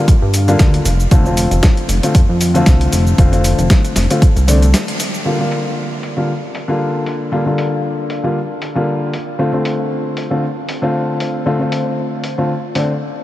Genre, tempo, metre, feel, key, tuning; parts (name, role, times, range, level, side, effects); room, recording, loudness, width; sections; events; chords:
nu-disco, nu disco; 116 BPM; 4/4; swing 56% on 16ths; G minor; A4 = 440 Hz
warm grand piano; accompaniment; 0.0-12.9 s; D3 to F4; -17 LUFS; left 1 dB; sidechain pumping, analog delay
dusty soul sampler-style drum kit; drums; 0.1-12.9 s; hi-hat, shaker, snare drum; -21 LUFS; equal; low-pass filter on hats, low-pass filter on perc, low-pass filter on snare
electronic kick drum; drums; 0.1-4.3 s; -11 LUFS; equal
chorused synth bass; bass; 0.2-4.7 s; F1 to G2; -14 LUFS; equal; tube saturation, sidechain pumping
moderate huge ambient reverb, RT60 7.4 s; dreamy mix soaked in reverb; -13 LUFS; side -14 dB against mid
0.0-5.3 A section; 5.3-13.2 B section
break 4.7-5.3; band accent 4.7
0.0 Gm7; 0.9 F6; 5.3 Gm7; 9.1 F6